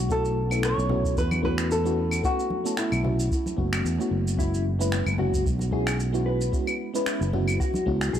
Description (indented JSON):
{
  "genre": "sunset chillout",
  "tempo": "112 BPM",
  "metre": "4/4",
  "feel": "swing 55% on 16ths",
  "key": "F# minor",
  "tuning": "A4 = 442 Hz",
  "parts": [
    { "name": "flamenco guitar", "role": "melody", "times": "0.0-3.3 s", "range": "E4 to C#5", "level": "-28 LUFS", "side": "equal", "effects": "analog delay" },
    { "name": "mellow FM electric piano", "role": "accompaniment", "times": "0.0-8.2 s", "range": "G#3 to B4", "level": "-29 LUFS", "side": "moving between left 3 dB and right 3 dB", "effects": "chorus, phaser, auto-pan, low-pass filter, tape echo" },
    { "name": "fretless electric bass", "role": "bass", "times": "0.0-8.2 s", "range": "F#1 to E2", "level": "-26 LUFS", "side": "equal", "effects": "transformer saturation" },
    { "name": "electronic kick drum", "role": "drums", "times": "0.1-8.0 s", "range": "none", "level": "-28 LUFS", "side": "equal", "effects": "none" },
    { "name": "electronic shaker, claves and finger snaps", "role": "drums", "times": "0.1-8.2 s", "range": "none", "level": "-32 LUFS", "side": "equal", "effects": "none" },
    { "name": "congas", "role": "percussion", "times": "0.9-7.8 s", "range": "none", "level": "-34 LUFS", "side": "right 2 dB", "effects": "none" },
    { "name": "mellow electric guitar", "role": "arpeggios", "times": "4.4-8.2 s", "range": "E4 to B4", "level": "-32 LUFS", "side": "left 3 dB", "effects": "wide subtle chorus, tape echo" }
  ],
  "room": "little or no reverb",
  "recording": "dry, gritty hardware recording",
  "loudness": "-23 LUFS",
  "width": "side -10 dB against mid",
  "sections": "0.0-8.2 A section",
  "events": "none",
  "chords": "0.1 B9sus4; 4.4 F#9sus4"
}